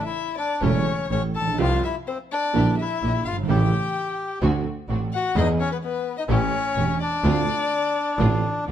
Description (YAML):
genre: tango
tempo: 127 BPM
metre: 4/4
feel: rubato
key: D minor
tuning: A4 = 440 Hz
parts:
  - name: bandoneon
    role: melody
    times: 0.0-8.6 s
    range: B3 to A4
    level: -26 LUFS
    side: left 2 dB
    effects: none
  - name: dark violin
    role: second line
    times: 0.0-8.6 s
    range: B4 to A5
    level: -29 LUFS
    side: left 8 dB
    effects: none
  - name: warm concert grand piano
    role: accompaniment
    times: 0.6-8.7 s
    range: E1 to G#4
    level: -25 LUFS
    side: right 3 dB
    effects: none
  - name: muted symphonic string section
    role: stabs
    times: 0.6-8.7 s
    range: A3 to A4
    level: -34 LUFS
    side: right 4 dB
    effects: none
  - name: bright double bass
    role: bass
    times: 0.6-8.7 s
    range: E1 to E2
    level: -24 LUFS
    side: right 1 dB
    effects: none
room: moderate large studio reverb, RT60 1.1 s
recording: dark, warm production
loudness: -20 LUFS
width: side -10 dB against mid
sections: 0.0-8.7 A section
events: none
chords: 0.0 A7; 1.6 Csus4; 2.5 Em7b5/Bb; 3.5 A; 4.4 D7; 5.4 E; 6.3 A7; 7.2 Dm7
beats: 0.13 0.61 1.10 | 1.58 2.06 2.54 3.01 | 3.48 3.95 4.42 4.89 | 5.36 5.82 6.30 6.77 | 7.25 7.72 8.20 8.68